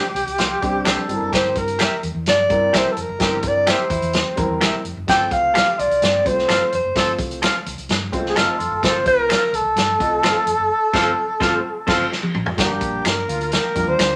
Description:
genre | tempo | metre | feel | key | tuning
uptempo 1960s-style soul | 128 BPM | 4/4 | straight | unclear | A4 = 439 Hz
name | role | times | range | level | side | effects
warm alto saxophone | melody | 0.0-14.2 s | G4 to G5 | -22 LUFS | equal | none
electric guitar through a small old amp | stabs | 0.0-12.0 s | D4 to F5 | -25 LUFS | equal | none
hollow-body short-scale fingered electric bass | bass | 0.1-14.2 s | F1 to G2 | -33 LUFS | equal | none
vintage drum kit | drums | 0.2-14.1 s | crash cymbal, hi-hat, kick drum, snare drum, toms | -24 LUFS | equal | none
direct-recorded clean electric guitar | riff | 0.4-9.3 s | C4 to G4 | -33 LUFS | equal | none
dark upright piano | accompaniment | 0.6-14.2 s | G3 to Eb5 | -29 LUFS | equal | none
finger snaps | percussion | 0.9-14.1 s | none | -29 LUFS | equal | none
mellow horn section | second line | 1.3-14.2 s | Bb3 to Bb4 | -30 LUFS | equal | none
room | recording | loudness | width
wet studio reverb, RT60 0.5 s | none | -19 LUFS | mono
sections
0.0-12.6 A section; 12.6-14.2 B section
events
band accent 10.7-12.6; drum fill 12.1-12.6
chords
0.0 Csus2; 1.1 C7; 5.1 F; 12.6 Gm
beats
0.39 0.86 | 1.33 1.80 2.27 2.74 | 3.21 3.68 4.15 4.62 | 5.09 5.55 6.02 6.49 | 6.96 7.43 7.90 8.37 | 8.83 9.30 9.77 10.24 | 10.71 11.18 11.64 12.11 | 12.58 13.05 13.52 13.99

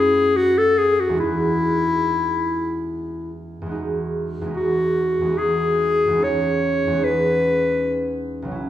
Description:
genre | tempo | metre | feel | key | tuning
classical, impressionist duo for clarinet and harp | 67-79 BPM | 3/4 | rubato | E major | A4 = 441 Hz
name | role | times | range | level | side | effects
warm clarinet | melody | 0.0-8.2 s | E4 to C#5 | -19 LUFS | left 2 dB | none
concert harp | accompaniment | 0.0-8.7 s | B1 to G#4 | -24 LUFS | right 1 dB | none
room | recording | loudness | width
wet recital hall reverb, RT60 1.6 s | minimal, uncompressed stereo recording | -18 LUFS | side -12 dB against mid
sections
0.0-3.8 A section; 3.8-8.7 B section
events
none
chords
0.0 F#madd9; 1.2 Emaj9; 6.2 C#m9/E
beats
0.38 | 1.22 2.07 2.93 | 3.78 4.58 5.37 | 6.23 7.02 7.79 | 8.56

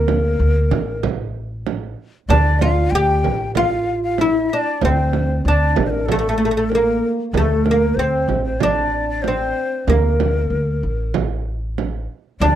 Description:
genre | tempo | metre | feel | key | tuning
Turkish makam ensemble | 95 BPM | 4/4 | straight | D makam ussak | A4 = 440 Hz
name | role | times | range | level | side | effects
oud | melody | 0.0-12.6 s | A3 to G4 | -19 LUFS | right 1 dB | none
breathy bright ney | second line | 0.0-12.6 s | A4 to G5 | -24 LUFS | left 5 dB | none
upright bass | bass | 0.0-12.6 s | A1 to D2 | -20 LUFS | equal | none
frame drum | percussion | 0.1-12.6 s | none | -23 LUFS | right 8 dB | none
room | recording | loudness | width
light reverb | dry, close 1970s-style studio recording | -16 LUFS | side -11 dB against mid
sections
0.0-12.6 A section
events
none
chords
none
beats
0.40 1.03 1.66 | 2.29 2.92 3.56 4.19 | 4.82 5.45 6.08 6.72 | 7.35 7.98 8.61 9.25 | 9.88 10.51 11.14 11.78 | 12.41

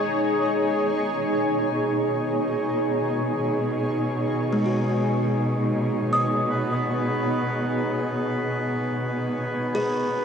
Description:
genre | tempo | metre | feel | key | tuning
ambient | free time | none | none | B major | A4 = 440 Hz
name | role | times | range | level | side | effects
granular cloud pad | sustained chords | 0.0-10.2 s | D#4 to C#5 | -24 LUFS | equal | built-in reverb
buzzing kalimba | arpeggios | 0.0-10.2 s | G#3 to D#6 | -28 LUFS | equal | diffuse ambient delay
dark studio cello section | bass | 0.0-10.2 s | B2 | -28 LUFS | equal | none
hand-pumped harmonium | drone | 6.5-10.2 s | B3 to B4 | -28 LUFS | right 1 dB | none
room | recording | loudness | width
wet cathedral reverb, RT60 6.2 s | none | -22 LUFS | side -6 dB against mid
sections
0.1-10.2 A section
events
fade-in on kalimba 0.1-10.2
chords
0.1 B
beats
free time

